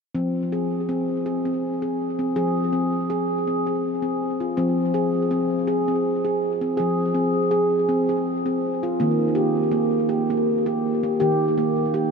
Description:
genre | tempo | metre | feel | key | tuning
world meditative | 81 BPM | 3/4 | swing 54% on 16ths | F minor | A4 = 438 Hz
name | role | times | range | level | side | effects
handpan | arpeggios | 0.1-12.1 s | Eb3 to Ab4 | -20 LUFS | equal | ping-pong delay
room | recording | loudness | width
wet huge ambient reverb, RT60 8.0 s | dreamy mix soaked in reverb | -20 LUFS | side -5 dB against mid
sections
0.2-4.6 A section; 4.6-12.1 B section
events
none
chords
0.2 Fm; 9.0 Eb

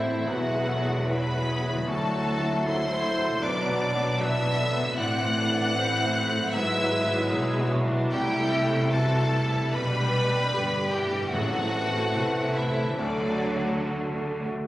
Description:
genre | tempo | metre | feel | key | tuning
cinematic, emotional film score for orchestra | 76 BPM | 4/4 | uneven beats, rubato | A dorian | A4 = 440 Hz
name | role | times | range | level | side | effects
rich symphonic violin section | melody | 0.0-13.9 s | D5 to F#6 | -32 LUFS | left 1 dB | none
clear clarinet | second line | 0.0-14.3 s | F#4 to D5 | -36 LUFS | right 1 dB | none
rich studio violin section | second line | 0.0-13.9 s | D4 to F#5 | -32 LUFS | equal | none
clear symphonic viola section | accompaniment | 0.0-14.5 s | D3 to A4 | -34 LUFS | right 2 dB | none
warm baby grand piano | accompaniment | 0.0-14.7 s | A1 to C5 | -32 LUFS | equal | none
dark French horn section | sustained chords | 0.0-14.4 s | E3 to A4 | -31 LUFS | equal | none
concert harp | arpeggios | 0.0-14.7 s | G#2 to G#5 | -38 LUFS | left 2 dB | none
clear symphonic double bass section | bass | 0.0-14.5 s | E1 to D2 | -32 LUFS | equal | none
rich symphonic cello section | bass | 0.0-14.5 s | D2 to D3 | -32 LUFS | right 1 dB | none
timpani | percussion | 11.3-12.5 s | A2 | -35 LUFS | right 1 dB | none
room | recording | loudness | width
moderate scoring stage reverb, RT60 1.6 s | recorded on a phone in the room, club reverb, compression | -23 LUFS | side -15 dB against mid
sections
0.0-14.7 A section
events
none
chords
0.3 Eadd9; 1.9 Dadd9; 3.4 Bm; 5.0 Am; 6.5 Eadd9/G#; 8.1 C6; 9.7 G/B; 11.3 Am; 13.0 D

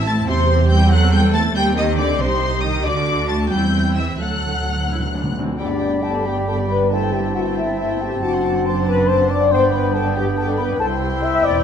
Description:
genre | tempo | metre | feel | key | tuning
quick classical-period movement for symphony orchestra | 92 BPM (dotted quarters) | 6/8 | rubato | G major | A4 = 438 Hz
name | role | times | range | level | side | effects
rich chamber violin section | melody | 0.0-11.6 s | G5 to A6 | -27 LUFS | left 3 dB | none
warm chamber violin section | second line | 0.0-11.6 s | C5 to A5 | -27 LUFS | left 3 dB | none
rich chamber viola section | accompaniment | 0.0-11.6 s | A3 to A4 | -27 LUFS | right 1 dB | none
rich chamber cello section | bass | 0.0-11.6 s | C2 to A3 | -23 LUFS | right 1 dB | none
warm studio double bass section | bass | 0.0-11.6 s | E1 to E2 | -22 LUFS | right 3 dB | none
timpani | percussion | 4.2-5.5 s | D3 | -28 LUFS | left 1 dB | none
clear oboe | second line | 5.6-11.6 s | G5 to B5 | -30 LUFS | equal | none
mellow hollow silver concert flute | second line | 5.6-11.6 s | D5 to E6 | -27 LUFS | left 2 dB | none
warm clarinet | second line | 5.6-11.6 s | D4 to G4 | -28 LUFS | left 1 dB | none
warm bassoon | accompaniment | 5.6-11.6 s | G3 to C4 | -28 LUFS | right 1 dB | none
warm French horn section | sustained chords | 5.6-11.6 s | D4 to E5 | -20 LUFS | left 4 dB | none
room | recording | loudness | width
moderate scoring stage reverb, RT60 1.5 s | dark, warm production | -16 LUFS | side -8 dB against mid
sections
0.0-5.6 A section; 5.6-11.6 B section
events
timpani fill 4.2-5.6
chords
0.3 C/E; 1.6 Cm/Eb; 2.9 D; 3.5 C/E; 4.2 D; 5.6 G; 6.9 Am7/G; 8.2 D7/F#; 9.5 G; 10.8 C

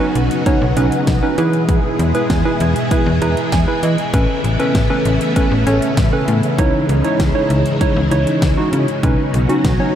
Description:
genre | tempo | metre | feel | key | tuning
synth-pop | 98 BPM | 4/4 | straight | unclear | A4 = 438 Hz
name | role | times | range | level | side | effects
warm analog keys | accompaniment | 0.0-10.0 s | C#4 to A#5 | -19 LUFS | right 2 dB | chorus
string machine, full ensemble | sustained chords | 0.0-10.0 s | B2 to G#4 | -19 LUFS | equal | ensemble chorus
slap-like FM bass | bass | 0.2-9.8 s | A1 to E3 | -17 LUFS | equal | none
pop drum kit | drums | 0.2-9.8 s | hi-hat, kick drum, snare drum | -20 LUFS | equal | overdrive
room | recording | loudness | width
moderate huge ambient reverb, RT60 9.1 s | dreamy mix soaked in reverb, faint mains hum | -13 LUFS | side -10 dB against mid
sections
0.0-10.0 A section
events
synth keys fill 2.9-4.1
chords
0.0 Badd9; 1.4 E; 4.1 Aadd9; 6.6 C#madd9; 9.0 Badd9

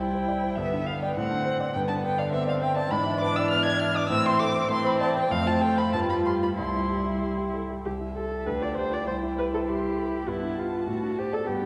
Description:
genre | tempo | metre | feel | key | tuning
quick classical-period movement for piano quartet | 93-104 BPM | 2/4 | rubato | C major | A4 = 440 Hz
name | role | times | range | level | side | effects
muted violin | melody | 0.0-11.7 s | E5 to G#6 | -32 LUFS | equal | none
muted cello | second line | 0.0-11.7 s | D3 to E4 | -34 LUFS | equal | none
muted viola | accompaniment | 0.0-11.7 s | B3 to D5 | -32 LUFS | equal | none
warm concert grand piano | accompaniment | 0.0-11.7 s | C2 to E5 | -32 LUFS | equal | none
room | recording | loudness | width
wet church reverb, RT60 3.4 s | recorded in a church or concert hall | -26 LUFS | mono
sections
0.0-7.9 A section; 7.9-11.7 A section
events
none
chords
0.0 C; 0.6 G; 1.2 D7/A; 1.7 G; 2.9 E7/G#; 4.1 Am; 5.3 F; 5.9 G7(no3); 6.6 C; 8.5 G5/D; 9.1 C; 10.3 G; 10.9 D7/A

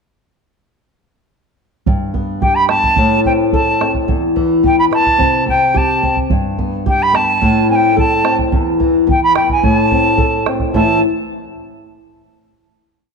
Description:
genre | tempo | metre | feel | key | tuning
andean folk, Andean ensemble | 108 BPM | 2/4 | straight | A minor | A4 = 440 Hz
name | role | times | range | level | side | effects
flamenco guitar | accompaniment | 1.9-11.0 s | E2 to E5 | -15 LUFS | left 2 dB | none
bombo | percussion | 1.9-11.0 s | none | -19 LUFS | right 3 dB | none
bright reedy quena | melody | 2.4-11.0 s | G5 to B5 | -14 LUFS | equal | none
room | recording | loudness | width
wet echo chamber reverb, RT60 2.0 s | 1960s-style stereo | -11 LUFS | side -5 dB against mid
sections
1.9-10.7 A section; 10.7-11.9 final chord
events
none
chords
1.9 G; 3.0 Am; 4.1 E5; 5.2 C5; 6.3 G; 7.4 Am; 8.5 E5; 9.6 Am

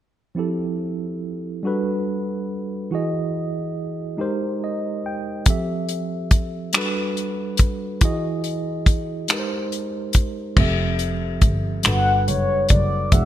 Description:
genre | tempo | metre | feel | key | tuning
slow six-eight R&B | 47 BPM (dotted quarters) | 6/8 | straight | unclear | A4 = 439 Hz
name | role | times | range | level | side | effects
tine electric piano | accompaniment | 0.3-13.3 s | E3 to G5 | -25 LUFS | right 2 dB | medium stereo tremolo
damped 70s drum kit | drums | 5.5-13.3 s | crash cymbal, finger snaps, hi-hat, kick drum | -18 LUFS | equal | gated reverb
warm double bass | bass | 10.6-13.3 s | E1 to G1 | -22 LUFS | equal | none
mellow horn-like synth lead | melody | 11.9-13.3 s | Db5 to F#5 | -20 LUFS | left 2 dB | chorus
room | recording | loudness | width
light reverb, studio ambience | bright 1980s-style digital production | -20 LUFS | side -12 dB against mid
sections
0.4-10.6 A section; 10.6-13.3 B section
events
tine electric piano fill 4.2-5.5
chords
0.4 Fmaj9; 1.6 Gmaj9; 2.9 Emaj9; 4.2 Abmaj9; 5.5 Fmaj9; 6.7 Gmaj9; 8.0 Emaj9; 9.3 Abmaj9; 10.6 Fmaj9; 11.8 Gmaj9

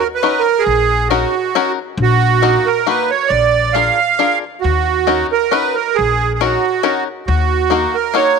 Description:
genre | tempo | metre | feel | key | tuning
musette waltz | 136 BPM | 3/4 | rubato | Eb minor | A4 = 440 Hz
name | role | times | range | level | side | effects
accordion | melody | 0.0-8.4 s | Gb4 to F5 | -14 LUFS | right 8 dB | light tremolo tuning
bluegrass banjo | accompaniment | 0.2-8.4 s | Bb3 to Bb4 | -18 LUFS | left 14 dB | none
upright bass | bass | 0.7-7.8 s | Bb1 to Eb2 | -18 LUFS | left 3 dB | none
room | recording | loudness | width
light reverb, small room ambience | 1960s-style stereo with parts hard left and right | -13 LUFS | side -5 dB against mid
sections
0.0-8.4 A section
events
none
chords
0.0 Ebm7; 2.0 Ebm/Bb; 3.3 Bb7; 4.6 Ebm7; 7.3 Ebm

